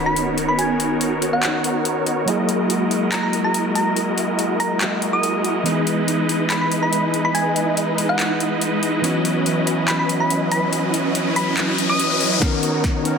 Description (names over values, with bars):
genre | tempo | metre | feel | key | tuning
future bass | 142 BPM | 4/4 | half-time | B major | A4 = 438 Hz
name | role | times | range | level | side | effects
tine electric piano | accompaniment | 0.0-13.2 s | D#3 to D#5 | -24 LUFS | left 1 dB | slow stereo tremolo, sidechain pumping
supersaw chords | riff | 0.0-13.2 s | F#3 to D#5 | -21 LUFS | right 1 dB | phaser, sidechain pumping, low-pass filter
impact and riser | sound effects | 0.0-0.6, 10.8-13.2 s | none | -26 LUFS | left 4 dB | none
thumb-piano-like synth pluck | melody | 0.1-12.4 s | F#5 to D#6 | -24 LUFS | equal | chorus, sidechain pumping, dub echo
trap drum kit | drums | 0.2-13.1 s | handclaps, hi-hat, snare drum | -25 LUFS | left 2 dB | overdrive
electronic kick drum | drums | 12.4-12.9 s | none | -21 LUFS | equal | overdrive
room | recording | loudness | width
moderate lush hall reverb, RT60 2.1 s | dense, heavily limited modern master | -17 LUFS | side -6 dB against mid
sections
0.0-12.4 A section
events
impact 0.0-0.6; riser 10.8-12.4, 12.4-13.2; drum fill 12.4-13.2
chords
0.0 Bmaj9; 2.3 F#13; 5.7 Emaj7; 9.0 C#m11; 12.4 Bmaj9